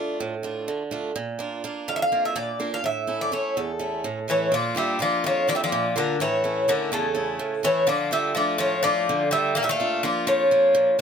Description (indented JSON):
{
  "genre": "greek folk, Greek bouzouki band",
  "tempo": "250 BPM (eighths)",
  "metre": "7/8",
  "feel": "straight",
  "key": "unclear",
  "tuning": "A4 = 438 Hz",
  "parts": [
    { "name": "Greek bouzouki", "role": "melody", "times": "0.0-11.0 s", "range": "A4 to F5", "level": "-23 LUFS", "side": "equal", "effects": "none" },
    { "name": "picked swing-style acoustic guitar", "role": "accompaniment", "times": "0.0-11.0 s", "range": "E2 to F4", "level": "-28 LUFS", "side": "right 5 dB", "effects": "none" },
    { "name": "Greek bouzouki", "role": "second line", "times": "4.3-11.0 s", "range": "C#3 to Bb3", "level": "-26 LUFS", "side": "left 4 dB", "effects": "none" }
  ],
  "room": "light reverb",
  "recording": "close, detailed microphones",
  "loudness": "-21 LUFS",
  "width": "side -7 dB against mid",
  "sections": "0.0-4.5 A section; 4.5-11.0 B section",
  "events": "none",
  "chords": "0.0 Dm; 1.2 Bb; 2.8 A; 4.5 Bb; 6.2 A; 7.9 Dm; 9.6 Bb",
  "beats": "0.19 0.43 0.67 0.91 | 1.15 1.40 1.64 1.88 2.12 2.36 2.60 | 2.84 3.08 3.32 3.56 3.80 4.04 4.28 | 4.52 4.76 5.00 5.24 5.48 5.72 5.96 | 6.20 6.44 6.68 6.92 7.16 7.40 7.64 | 7.88 8.12 8.36 8.60 8.84 9.08 9.32 | 9.56 9.80 10.04 10.28 10.52 10.75 10.99"
}